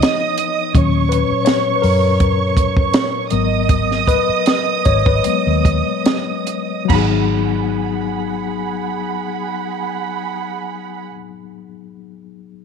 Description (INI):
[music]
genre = lush 1970s-style soul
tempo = 71-83 BPM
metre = 4/4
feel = swing 54% on 16ths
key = G# minor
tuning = A4 = 440 Hz
[part]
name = dark symphonic violin section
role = second line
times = 0.0-11.1 s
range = G#4 to D#6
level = -21 LUFS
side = right 11 dB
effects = none
[part]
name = mellow tine electric piano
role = accompaniment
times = 0.0-12.6 s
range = A#2 to D#5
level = -20 LUFS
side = left 10 dB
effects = medium stereo tremolo
[part]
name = compact cocktail drum kit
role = drums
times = 0.0-7.1 s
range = crash cymbal, hi-hat, kick drum, snare drum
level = -18 LUFS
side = right 1 dB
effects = none
[part]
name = vintage muted fingered electric bass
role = bass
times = 0.8-11.1 s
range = G#1 to F#2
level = -19 LUFS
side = right 1 dB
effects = none
[sound]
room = light reverb, small room reverb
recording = 1960s-style stereo with parts hard left and right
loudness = -15 LUFS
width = side -6 dB against mid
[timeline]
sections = 0.0-6.9 A section; 6.9-10.3 B section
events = tine electric piano solo 0.0-6.9; slowing down 0.7-6.9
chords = 0.0 C#7; 0.7 D#m7; 3.3 G#m7